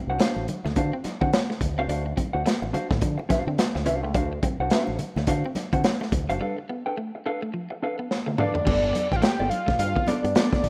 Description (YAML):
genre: funk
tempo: 106 BPM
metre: 4/4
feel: swing 60% on 16ths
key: unclear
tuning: A4 = 440 Hz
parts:
  - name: clean electric guitar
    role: riff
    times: 0.0-10.7 s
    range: E#3 to D4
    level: -36 LUFS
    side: equal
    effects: none
  - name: mellow electric guitar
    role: accompaniment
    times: 0.1-10.7 s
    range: B3 to G5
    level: -32 LUFS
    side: equal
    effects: none
  - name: fingered electric bass with an envelope filter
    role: bass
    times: 0.1-10.7 s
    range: F#1 to D3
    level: -31 LUFS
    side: equal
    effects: none
  - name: crunchy breakbeat drum kit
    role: drums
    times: 0.2-10.7 s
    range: crash cymbal, hi-hat, kick drum, snare drum, toms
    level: -27 LUFS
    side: equal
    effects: none
  - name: congas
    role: percussion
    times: 0.4-10.7 s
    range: none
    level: -38 LUFS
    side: equal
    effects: none
  - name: fat analog lead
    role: melody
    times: 8.4-10.7 s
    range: D5 to G5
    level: -28 LUFS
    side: equal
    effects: none
room: light reverb, small room ambience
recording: rough home demo mix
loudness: -25 LUFS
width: mono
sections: 0.0-8.7 A section; 8.7-10.7 B section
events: break 6.4-8.7; drum fill 8.1-8.7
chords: 0.0 D7#9; 6.4 G9 (rootless); 8.7 G9